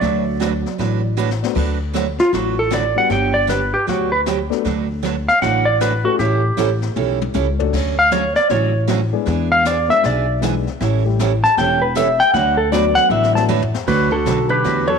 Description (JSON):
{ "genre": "country, western swing", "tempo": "156 BPM", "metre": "4/4", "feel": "swing 64% on 8ths", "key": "D major", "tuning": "A4 = 440 Hz", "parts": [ { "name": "clean lap steel guitar", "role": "melody", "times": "0.0-15.0 s", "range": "F4 to A5", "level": "-16 LUFS", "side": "left 1 dB", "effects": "none" }, { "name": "archtop guitar, miked and amplified", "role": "second line", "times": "0.0-1.1, 13.9-15.0 s", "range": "D3 to F#3", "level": "-24 LUFS", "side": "right 12 dB", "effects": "none" }, { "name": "picked steel-string acoustic guitar", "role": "accompaniment", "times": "0.0-14.9 s", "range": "D3 to B4", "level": "-23 LUFS", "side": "right 13 dB", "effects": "none" }, { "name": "upright bass", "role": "bass", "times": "0.0-15.0 s", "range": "E1 to E2", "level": "-21 LUFS", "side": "left 1 dB", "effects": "none" }, { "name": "jazz brush drum kit", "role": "drums", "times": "0.0-15.0 s", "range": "brushed snare drum, crash cymbal, hi-hat, kick drum, snare drum, toms", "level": "-29 LUFS", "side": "left 12 dB", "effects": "none" }, { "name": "dark upright piano", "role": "accompaniment", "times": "1.4-13.5 s", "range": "F#3 to B4", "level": "-24 LUFS", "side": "left 15 dB", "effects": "none" } ], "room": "light reverb, small room reverb", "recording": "1960s-style stereo with parts hard left and right", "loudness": "-15 LUFS", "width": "side -6 dB against mid", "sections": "0.0-1.6 A section; 1.6-13.9 B section; 13.9-15.0 A section", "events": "drum fill 1.2-1.6, 7.0-7.7, 13.1-13.9; electric slide guitar solo 1.6-13.9", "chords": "0.0 D6; 3.1 Gmaj7; 4.6 A7; 7.7 Dmaj7; 9.3 E7; 10.8 A7; 12.3 D6", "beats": "| 0.02 0.40 0.79 1.18 | 1.56 1.95 2.33 2.72 | 3.10 3.49 3.88 4.26 | 4.65 5.03 5.42 5.80 | 6.19 6.58 6.96 7.34 | 7.73 8.11 8.50 8.88 | 9.27 9.65 10.04 10.42 | 10.81 11.19 11.57 11.96 | 12.34 12.73 13.11 13.49 | 13.88 14.26 14.65" }